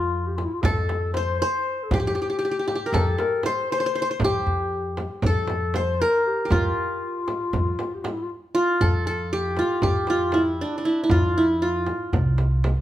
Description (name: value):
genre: Turkish makam ensemble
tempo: 235 BPM (eighths)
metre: 9/8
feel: straight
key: F makam rast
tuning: A4 = 440 Hz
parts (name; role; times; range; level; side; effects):
- qanun; melody; 0.0-12.8 s; D4 to C5; -24 LUFS; equal; none
- mellow clarinet; second line; 0.0-8.3 s; E4 to C5; -28 LUFS; left 5 dB; none
- upright bass; bass; 0.0-12.7 s; C2 to F2; -25 LUFS; equal; none
- darbuka; percussion; 0.1-12.8 s; none; -30 LUFS; left 1 dB; none
- frame drum; percussion; 0.4-12.8 s; none; -30 LUFS; right 3 dB; none
room: moderate large studio reverb, RT60 1.0 s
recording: band playing live in one room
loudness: -21 LUFS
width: side -13 dB against mid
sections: 0.0-8.8 A section; 8.8-12.8 B section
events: none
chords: none